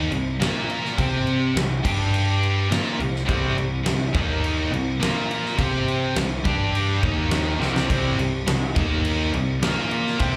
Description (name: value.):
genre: hard rock.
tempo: 104 BPM.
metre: 4/4.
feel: straight.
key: C minor.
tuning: A4 = 440 Hz.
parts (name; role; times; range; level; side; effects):
distorted electric guitar; riff; 0.0-10.4 s; C3 to C5; -33 LUFS; equal; none.
overdriven electric guitar; riff; 0.0-10.4 s; C3 to C5; -29 LUFS; equal; none.
growling picked electric bass; bass; 0.0-10.4 s; C2 to C3; -28 LUFS; equal; overdrive.
huge arena drum kit; drums; 0.1-10.3 s; crash cymbal, kick drum, snare drum; -28 LUFS; equal; none.
tight distorted guitar; riff; 3.3-10.4 s; C3 to C5; -32 LUFS; equal; distortion, slapback echo.
room: little or no reverb.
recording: live gig heard through the venue's PA, club ambience.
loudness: -23 LUFS.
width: mono.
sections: 0.0-7.9 A section; 7.9-10.4 B section.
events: drum fill 7.6.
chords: 0.1 C5; 0.4 Bb5; 1.0 C5; 1.8 G5; 2.7 C5; 4.2 Eb5; 4.7 C5; 5.0 Bb5; 5.6 C5; 6.5 G5; 7.0 Eb5; 7.6 C5; 8.8 Eb5; 9.3 C5; 9.6 Bb5.